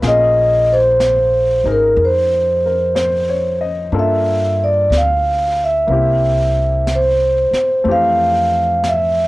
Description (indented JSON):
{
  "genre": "jazz ballad",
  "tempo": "61 BPM",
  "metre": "4/4",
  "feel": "swing 66% on 8ths",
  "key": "unclear",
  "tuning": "A4 = 440 Hz",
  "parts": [
    { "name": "clear baby grand piano", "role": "accompaniment", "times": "0.0-9.3 s", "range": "E3 to Eb5", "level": "-24 LUFS", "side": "left 5 dB", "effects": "cassette tape" },
    { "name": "upright bass", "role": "bass", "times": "0.0-9.3 s", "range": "Ab1 to G2", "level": "-20 LUFS", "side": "equal", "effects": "none" },
    { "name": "jazz brush drum kit", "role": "drums", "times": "0.0-9.3 s", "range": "brushed snare drum, hi-hat, snare drum", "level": "-30 LUFS", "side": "equal", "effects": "cassette tape" },
    { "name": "vibraphone with soft mallets", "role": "melody", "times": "0.1-9.3 s", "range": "Bb4 to F5", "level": "-14 LUFS", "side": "right 1 dB", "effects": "cassette tape" }
  ],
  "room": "light reverb",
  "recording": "home recording on cassette",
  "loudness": "-12 LUFS",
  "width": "side -19 dB against mid",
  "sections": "0.0-9.3 A section",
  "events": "none",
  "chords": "0.0 Bbm9; 3.9 Gm9; 5.9 C7; 7.9 Fmaj9"
}